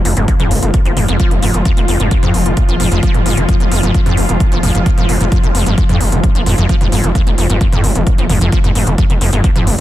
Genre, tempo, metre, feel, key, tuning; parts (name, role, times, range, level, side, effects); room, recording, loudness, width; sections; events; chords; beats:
driving peak-time techno; 131 BPM; 4/4; straight; F minor; A4 = 440 Hz
gritty driven synth bass; bass; 0.0-9.8 s; F1 to F2; -16 LUFS; equal; sidechain pumping
swarming drone; drone; 0.0-9.8 s; F3 to F4; -20 LUFS; left 1 dB; built-in reverb, sidechain pumping
acid bass, saw; riff; 0.1-9.8 s; F1 to F3; -18 LUFS; equal; ensemble chorus, sidechain pumping, tape echo
techno drum kit; drums; 0.1-9.8 s; hi-hat, toms; -20 LUFS; equal; sidechain pumping on hats, sidechain pumping on toms
electronic kick drum; drums; 0.3-9.5 s; -14 LUFS; equal
light reverb; dense, heavily limited modern master; -10 LUFS; side -14 dB against mid
0.0-9.8 A section
0.28 0.74 1.20 | 1.66 2.11 2.57 3.03 | 3.49 3.94 4.40 4.86 | 5.32 5.78 6.24 6.69 | 7.15 7.61 8.07 8.53 | 8.98 9.44